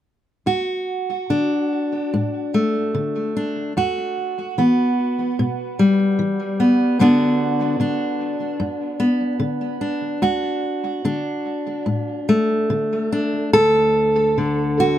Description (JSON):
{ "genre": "folk, solo fingerstyle acoustic guitar", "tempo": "73 BPM", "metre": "4/4", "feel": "rubato", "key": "D major", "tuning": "A4 = 440 Hz", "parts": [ { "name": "fingerpicked steel-string acoustic guitar", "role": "solo", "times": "0.5-15.0 s", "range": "D2 to A4", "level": "-18 LUFS", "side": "equal", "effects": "tape echo" } ], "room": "light reverb", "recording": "none", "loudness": "-18 LUFS", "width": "side -11 dB against mid", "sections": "0.5-13.5 A section; 13.5-15.0 B section", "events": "none", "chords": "0.5 D; 3.8 Emadd9; 7.0 Bm/F#; 10.2 D; 13.5 N.C." }